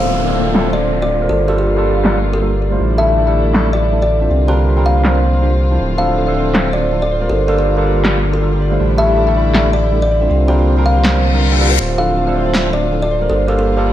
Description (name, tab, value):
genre	future bass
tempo	160 BPM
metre	4/4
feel	swing 55% on 16ths, half-time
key	D minor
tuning	A4 = 444 Hz
part	kalimba	melody	0.0-13.6 s	A4 to F5	-19 LUFS	left 1 dB	ping-pong delay
part	barky tine electric piano	accompaniment	0.0-13.9 s	F3 to C5	-20 LUFS	right 2 dB	overdrive, phaser, ping-pong delay
part	dark chamber string section	sustained chords	0.0-13.9 s	D3 to F4	-22 LUFS	left 1 dB	low-pass filter
part	Celtic harp	arpeggios	0.0-13.9 s	C4 to F5	-23 LUFS	right 1 dB	low-pass filter, ping-pong delay
part	saturated sub bass	bass	0.0-13.9 s	D1 to C2	-16 LUFS	equal	none
part	downlifter and reverse cymbal	sound effects	0.0-2.8, 11.2-11.8 s	none	-21 LUFS	left 4 dB	none
part	electronic snare drum and handclaps	drums	0.5-12.6 s	none	-18 LUFS	equal	overdrive, low-pass filter on snare, low-pass filter on hats, low-pass filter on cymbals, low-pass filter on room
room	moderate plate reverb, RT60 1.3 s, digital ambience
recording	dreamy mix soaked in reverb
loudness	-12 LUFS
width	side -12 dB against mid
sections	0.0-13.9 A section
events	filter sweep on drum 0.0-13.9; filter sweep on harp 0.0-13.9; reverse cymbal 11.2-11.8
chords	0.0 Dm7; 1.3 Gm7; 2.8 A7sus4; 4.3 C9sus4; 5.8 Dm7; 7.3 Gm7; 8.8 A7sus4; 10.3 C9sus4; 11.8 Dm7; 13.3 Gm7